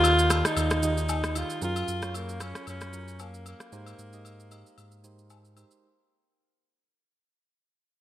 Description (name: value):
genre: amapiano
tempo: 114 BPM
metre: 4/4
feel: swing 55% on 16ths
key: unclear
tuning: A4 = 440 Hz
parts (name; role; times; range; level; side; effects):
- breathy alto saxophone; melody; 0.0-5.3 s; Bb3 to F4; -28 LUFS; equal; digital delay
- soft electric-piano-like synth keys; accompaniment; 0.0-5.9 s; Eb3 to Eb5; -35 LUFS; right 4 dB; chorus
- sub bass with octave; bass; 0.0-5.6 s; Eb2 to Ab2; -31 LUFS; equal; none
- electronic shaker and rim click; drums; 0.0-5.8 s; none; -32 LUFS; right 1 dB; gated reverb
- agogo bells and woodblock; percussion; 0.0-5.7 s; none; -36 LUFS; left 8 dB; none
room: light reverb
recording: bright 1980s-style digital production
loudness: -25 LUFS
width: side -13 dB against mid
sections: 0.0-5.8 A section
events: fade-out 0.0-5.8; break 3.7-5.8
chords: 0.0 Ebmaj9; 1.6 Gbmaj9; 3.7 Abmaj9